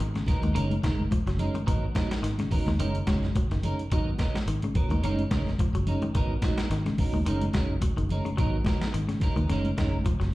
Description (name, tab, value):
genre	afrobeat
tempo	107 BPM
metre	4/4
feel	swing 55% on 16ths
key	G# dorian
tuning	A4 = 440 Hz
part	electric guitar at the edge of break-up	arpeggios	0.0-10.3 s	C#3 to F#3	-35 LUFS	left 4 dB	slapback echo
part	clean electric guitar	stabs	0.0-10.0 s	F#3 to A#4	-33 LUFS	right 4 dB	analog chorus, slapback echo
part	fingered electric bass	bass	0.0-10.3 s	F#1 to D#2	-28 LUFS	equal	none
part	boom bap sampler-style drum kit	drums	0.0-10.3 s	hi-hat, kick drum, snare drum	-28 LUFS	equal	none
part	congas	percussion	0.1-10.2 s	none	-33 LUFS	left 1 dB	slapback echo
room	light reverb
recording	live gig heard through the venue's PA, club reverb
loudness	-24 LUFS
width	side -18 dB against mid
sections	0.0-10.3 A section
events	none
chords	0.0 G#m9; 0.6 F#69; 1.7 G#m9; 2.8 F#69; 3.9 G#m9; 5.0 F#69; 6.1 G#m9; 7.3 F#69; 8.4 G#m9; 9.5 F#69